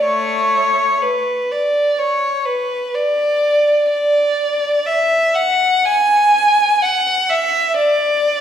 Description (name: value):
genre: classical, free, expressive piece for unaccompanied violin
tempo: 62 BPM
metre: 4/4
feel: rubato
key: unclear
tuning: A4 = 440 Hz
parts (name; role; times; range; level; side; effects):
- rich violin; solo; 0.0-8.4 s; A3 to G#5; -14 LUFS; equal; none
room: wet recital hall reverb, RT60 1.5 s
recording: heard from further back in the room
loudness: -14 LUFS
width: side -9 dB against mid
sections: 0.0-8.4 A section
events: none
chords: none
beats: | 0.05 1.04 2.00 2.96 | 3.91 4.87 5.87 6.84 | 7.78